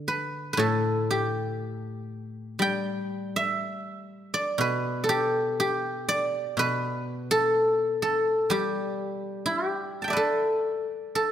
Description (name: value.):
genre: chinese traditional, Chinese solo plucked strings.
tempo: 60 BPM.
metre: 4/4.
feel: rubato.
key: unclear.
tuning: A4 = 440 Hz.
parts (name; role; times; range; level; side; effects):
guzheng; solo; 0.0-11.3 s; A2 to A5; -25 LUFS; equal; none.
room: moderate concert hall reverb, RT60 2.2 s.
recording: none.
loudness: -24 LUFS.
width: side -10 dB against mid.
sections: 0.0-11.3 A section.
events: none.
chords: none.